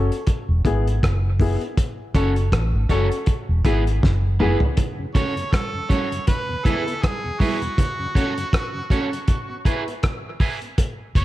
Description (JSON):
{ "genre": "dub reggae", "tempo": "80 BPM", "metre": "4/4", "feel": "swing 55% on 16ths", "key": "unclear", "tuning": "A4 = 440 Hz", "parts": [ { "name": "warm upright piano", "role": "stabs", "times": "0.0-4.6, 11.2 s", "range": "B3 to A4", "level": "-26 LUFS", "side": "left 4 dB", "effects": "high-pass filter, dub echo" }, { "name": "vintage muted fingered electric bass", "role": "bass", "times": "0.0-4.6, 11.2 s", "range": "E1 to A1", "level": "-20 LUFS", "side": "equal", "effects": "none" }, { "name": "cloth-damped thuddy drum kit", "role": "drums", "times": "0.1-11.2 s", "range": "hi-hat, kick drum, rim click, snare drum, toms", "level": "-21 LUFS", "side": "equal", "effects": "none" }, { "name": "electric guitar at the edge of break-up", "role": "accompaniment", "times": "2.1-11.2 s", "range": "B3 to C#5", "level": "-28 LUFS", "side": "right 3 dB", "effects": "high-pass filter, dub echo" }, { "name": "congas", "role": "percussion", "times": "4.8-8.0 s", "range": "none", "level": "-33 LUFS", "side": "right 5 dB", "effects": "high-pass filter on perc, dub echo" }, { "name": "mellow tonewheel organ", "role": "accompaniment", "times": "5.0-11.2 s", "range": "E2 to F#4", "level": "-32 LUFS", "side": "left 1 dB", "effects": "slow rotary speaker, high-pass filter" }, { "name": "warm harmonica", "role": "melody", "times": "5.2-11.2 s", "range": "F#4 to C#5", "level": "-29 LUFS", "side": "right 1 dB", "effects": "dub echo" } ], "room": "light reverb, small room ambience", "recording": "dark, warm production", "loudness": "-19 LUFS", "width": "side -16 dB against mid", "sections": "0.0-11.2 A section", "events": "break 0.0-4.8, 4.8-10.8; drum fill 4.0-4.8; part muted 7.8-11.2; filter sweep 7.8-11.2", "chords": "0.3 E; 1.8 F#m; 3.3 E; 4.8 F#m; 6.3 E; 7.8 F#m; 9.3 E" }